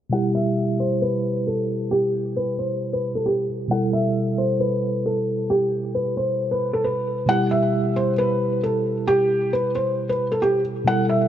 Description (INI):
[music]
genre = hip hop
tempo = 134 BPM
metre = 4/4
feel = half-time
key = E minor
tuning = A4 = 444 Hz
[part]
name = felt-muted upright piano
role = melody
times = 0.1-11.3 s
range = G4 to F#5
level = -22 LUFS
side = equal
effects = low-pass filter
[part]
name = mellow tine electric piano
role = accompaniment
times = 0.1-11.3 s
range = B2 to A4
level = -24 LUFS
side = right 1 dB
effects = medium stereo tremolo, low-pass filter
[sound]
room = light reverb, studio ambience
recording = low-pass filter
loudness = -20 LUFS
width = side -10 dB against mid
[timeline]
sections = 0.1-7.3 A section; 7.3-11.3 B section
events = filter sweep 0.1-7.3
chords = 0.1 Em